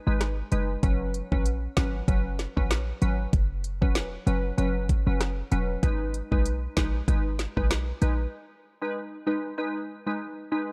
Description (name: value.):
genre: dancehall.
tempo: 96 BPM.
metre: 4/4.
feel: swing 56% on 16ths.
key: G# minor.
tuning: A4 = 437 Hz.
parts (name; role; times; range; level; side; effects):
glassy wavetable pluck; accompaniment; 0.1-10.7 s; F#3 to B4; -33 LUFS; equal; chorus.
short 808-style bass; bass; 0.1-8.3 s; E1 to B1; -30 LUFS; equal; none.
island pop drum kit; drums; 0.2-8.2 s; hi-hat, kick drum, rim click, snare drum; -29 LUFS; equal; none.
room: digital ambience.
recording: dark, warm production.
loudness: -27 LUFS.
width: mono.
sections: 0.0-10.7 A section.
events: break 0.0-0.8, 8.3-10.7.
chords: 0.0 G#m; 0.8 F#sus4; 5.8 G#m.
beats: 0.21 | 0.83 1.46 2.08 2.71 | 3.33 3.96 4.58 5.21 | 5.83 6.46 7.08 7.71 | 8.33 8.96 9.58 10.21.